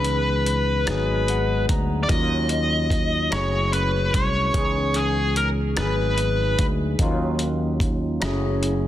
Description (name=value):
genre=slow six-eight R&B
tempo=49 BPM (dotted quarters)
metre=6/8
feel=straight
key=Eb phrygian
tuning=A4 = 440 Hz
part: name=smooth overdriven lead guitar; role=melody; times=0.0-6.7 s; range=Ab4 to Eb5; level=-24 LUFS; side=left 2 dB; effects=none
part: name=barky tine electric piano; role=accompaniment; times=0.0-8.9 s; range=Fb3 to Bb5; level=-27 LUFS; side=left 1 dB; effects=overdrive, lush chorus
part: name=fretless electric bass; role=bass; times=0.0-8.9 s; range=Gb1 to Eb2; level=-24 LUFS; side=equal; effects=analog chorus
part: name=dusty soul sampler-style drum kit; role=drums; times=0.0-8.8 s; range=hi-hat, kick drum, rim click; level=-25 LUFS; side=equal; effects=soft clipping on snare
room=digital ambience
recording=dense, heavily limited modern master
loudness=-20 LUFS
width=side -12 dB against mid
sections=0.0-8.9 A section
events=tine electric piano fill 0.9-2.1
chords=0.0 Dbm9; 0.9 Abm7; 2.1 Ebm9; 3.3 Gbm9; 4.5 Dbm9; 5.8 Abm7; 7.0 Ebm9; 8.2 Gbm9